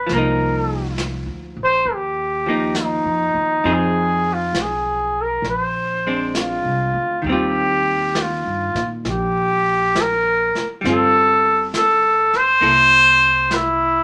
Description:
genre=jazz ballad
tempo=67 BPM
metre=4/4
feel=swing 69% on 8ths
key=C minor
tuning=A4 = 439 Hz
part: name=mellow trumpet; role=melody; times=0.0-14.0 s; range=Eb4 to C5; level=-18 LUFS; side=equal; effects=none
part: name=archtop guitar, miked and amplified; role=accompaniment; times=0.0-14.0 s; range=Eb3 to A4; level=-26 LUFS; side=equal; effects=none
part: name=upright bass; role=bass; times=0.0-14.0 s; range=G1 to Bb2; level=-30 LUFS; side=equal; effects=none
part: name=jazz brush drum kit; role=drums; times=0.1-14.0 s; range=brushed snare drum, hi-hat, snare drum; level=-30 LUFS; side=equal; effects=none
room=moderate studio ambience, RT60 0.5 s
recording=none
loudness=-18 LUFS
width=mono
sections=0.0-7.2 A section; 7.2-14.0 B section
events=none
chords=0.1 Cm11; 3.6 Fm7; 5.4 Bb9; 7.2 Eb69; 10.8 G9sus4; 12.6 C6

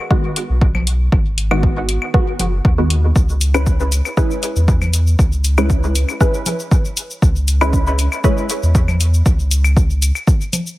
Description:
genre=dub techno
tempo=118 BPM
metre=4/4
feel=straight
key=unclear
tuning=A4 = 438 Hz
part: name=filtered dub chord stab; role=stabs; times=0.1-8.4 s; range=D#3 to B4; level=-21 LUFS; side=equal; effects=chorus, phaser, vintage 12-bit sampler grit, sidechain pumping, dub echo
part: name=electronic kick drum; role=drums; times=0.1-10.4 s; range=none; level=-14 LUFS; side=equal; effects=none
part: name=electronic hi-hat and shaker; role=drums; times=0.4-10.8 s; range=none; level=-23 LUFS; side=left 2 dB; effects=none
part: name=pure sine sub bass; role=bass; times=0.5-10.1 s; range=F#1 to E2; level=-16 LUFS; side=equal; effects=sidechain pumping
part: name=congas and claves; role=percussion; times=0.7-10.6 s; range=none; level=-25 LUFS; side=left 2 dB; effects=overdrive, sidechain pumping on perc, dub echo
room=digital ambience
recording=heavily compressed radio sound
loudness=-13 LUFS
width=side -17 dB against mid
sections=0.0-10.8 A section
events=none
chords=0.0 G#m7; 3.2 C#m7

